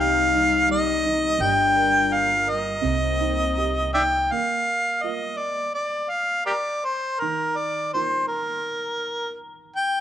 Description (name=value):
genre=acoustic folk-pop ballad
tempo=83 BPM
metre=4/4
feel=straight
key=unclear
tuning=A4 = 443 Hz
part: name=warm harmonica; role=melody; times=0.0-10.0 s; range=G4 to G5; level=-22 LUFS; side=equal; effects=none
part: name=mellow French horn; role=second line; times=0.0-3.9 s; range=C4 to Eb4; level=-26 LUFS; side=left 12 dB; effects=none
part: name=felt-muted upright piano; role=accompaniment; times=0.0-10.0 s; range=C3 to F5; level=-31 LUFS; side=right 12 dB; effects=none
part: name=warm chamber string section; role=sustained chords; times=0.0-4.3 s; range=C3 to Bb4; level=-35 LUFS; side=equal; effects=none
part: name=upright bass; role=bass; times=0.0-4.3 s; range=G1 to C2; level=-30 LUFS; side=equal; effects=none
room=wet spring reverb, RT60 1.5 s, small room reverb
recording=1960s-style stereo with parts hard left and right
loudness=-20 LUFS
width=side -10 dB against mid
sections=0.0-4.3 A section; 4.3-10.0 B section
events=none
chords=0.0 Cm; 1.4 Gm7; 2.8 Cm7; 4.3 Bb5; 7.2 Ebsus2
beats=0.70 | 1.41 2.13 2.85 3.58 | 4.32 5.05 5.78 6.51 | 7.23 7.96 8.68 9.40